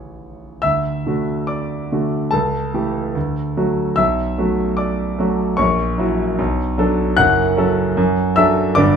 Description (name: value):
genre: classical, romantic character piece for solo piano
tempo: 60-76 BPM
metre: 2/4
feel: rubato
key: D major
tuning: A4 = 440 Hz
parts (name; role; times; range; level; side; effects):
- warm concert grand piano; solo; 0.0-9.0 s; F#1 to F#6; -16 LUFS; equal; none
room: moderate large studio reverb, RT60 0.8 s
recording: minimal, uncompressed stereo recording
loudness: -16 LUFS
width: side -7 dB against mid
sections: 0.6-9.0 A section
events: none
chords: 0.0 A; 0.6 D; 2.3 A7/C#; 3.2 D; 4.0 Bm7; 5.6 F#7/A#; 6.4 Bm7; 7.2 F#m; 8.0 D/F#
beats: | 0.64 1.50 | 2.33 3.15 | 3.98 4.79 | 5.59 6.38 | 7.19 7.98 | 8.77